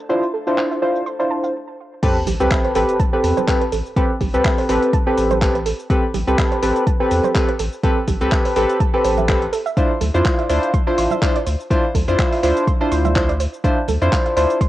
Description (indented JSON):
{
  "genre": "deep house",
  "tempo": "124 BPM",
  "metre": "4/4",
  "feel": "swing 55% on 16ths",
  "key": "A minor",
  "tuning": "A4 = 440 Hz",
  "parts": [
    { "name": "analog string pad", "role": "texture", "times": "0.0-1.5 s", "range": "A4 to A5", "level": "-39 LUFS", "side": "equal", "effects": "none" },
    { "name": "deep mellow chord stab", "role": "stabs", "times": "0.1-14.6 s", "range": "C4 to C5", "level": "-18 LUFS", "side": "equal", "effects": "chorus, cassette tape, sidechain pumping, tape echo" },
    { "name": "deep house drum kit", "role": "drums", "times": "0.1-14.7 s", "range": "cabasa, crash cymbal, handclaps, hi-hat", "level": "-28 LUFS", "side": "equal", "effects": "overdrive, low-pass filter on perc, low-pass filter on snare, low-pass filter on hats, low-pass filter on cymbals, low-pass filter on room" },
    { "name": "soft round pluck", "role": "arpeggios", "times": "0.3-14.7 s", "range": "G4 to C6", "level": "-26 LUFS", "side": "right 7 dB", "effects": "chorus, cassette tape, sidechain pumping, tape echo" },
    { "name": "electronic kick drum", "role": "drums", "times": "2.0-14.7 s", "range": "none", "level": "-19 LUFS", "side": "equal", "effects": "overdrive" },
    { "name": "sub drop", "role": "sound effects", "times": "2.0-4.0 s", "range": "none", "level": "-31 LUFS", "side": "equal", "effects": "none" },
    { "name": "warm sub bass", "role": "bass", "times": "2.3-14.5 s", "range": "A1 to F2", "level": "-21 LUFS", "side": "equal", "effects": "sidechain pumping" },
    { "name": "congas", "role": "percussion", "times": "2.3-14.0 s", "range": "none", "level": "-29 LUFS", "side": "right 9 dB", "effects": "none" }
  ],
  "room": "light reverb, digital ambience",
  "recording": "home recording on cassette",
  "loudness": "-16 LUFS",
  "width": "side -15 dB against mid",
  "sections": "0.0-2.0 A section; 2.0-14.7 B section",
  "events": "filter sweep on synth arpeggio sound 0.0-2.0; stop 1.5-2.0; drop 2.0-14.7; impact 2.0-4.0",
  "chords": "0.0 Dm9; 2.0 Am9; 9.5 Dm9",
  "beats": "| 0.09 0.58 1.06 1.54 | 2.03 2.51 3.00 3.48 | 3.96 4.45 4.93 5.42 | 5.90 6.38 6.87 7.35 | 7.83 8.32 8.80 9.29 | 9.77 10.25 10.74 11.22 | 11.71 12.19 12.67 13.16 | 13.64 14.12 14.61"
}